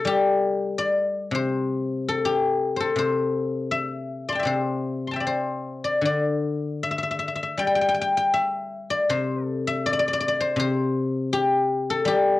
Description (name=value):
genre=chinese traditional, Chinese solo plucked strings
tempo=80 BPM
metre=4/4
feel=uneven beats, rubato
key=G zhi mode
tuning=A4 = 445 Hz
part: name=guzheng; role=solo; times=0.0-12.4 s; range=C3 to C6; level=-22 LUFS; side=left 2 dB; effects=cassette tape
room=light reverb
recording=home recording on cassette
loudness=-22 LUFS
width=side -16 dB against mid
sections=0.0-12.4 A section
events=none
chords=none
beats=| 0.06 0.78 1.51 2.25 | 2.98 3.72 4.48 5.25 | 6.03 6.82 7.59 8.35 | 9.11 9.85 10.59 11.33 | 12.06